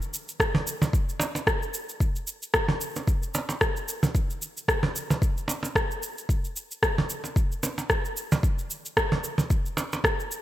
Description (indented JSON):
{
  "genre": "downtempo",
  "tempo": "112 BPM",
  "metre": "4/4",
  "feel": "swing 56% on 16ths",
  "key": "none",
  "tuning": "none",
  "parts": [
    { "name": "electronic shaker and rim click", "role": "drums", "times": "0.0-10.4 s", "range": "none", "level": "-28 LUFS", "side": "equal", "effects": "small room ambience" },
    { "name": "electronic kick drum", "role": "drums", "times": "0.4-10.2 s", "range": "none", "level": "-26 LUFS", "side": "equal", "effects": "small room ambience" },
    { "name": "cajon", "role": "percussion", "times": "0.5-10.0 s", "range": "none", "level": "-27 LUFS", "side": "right 2 dB", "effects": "none" }
  ],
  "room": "light reverb, digital ambience",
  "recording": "none",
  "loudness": "-24 LUFS",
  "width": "side -14 dB against mid",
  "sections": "0.0-10.4 A section",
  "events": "none",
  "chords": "none",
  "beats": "0.40 0.93 1.47 | 2.01 2.54 3.08 3.61 | 4.15 4.68 5.22 5.76 | 6.29 6.83 7.36 7.90 | 8.43 8.97 9.51 10.04"
}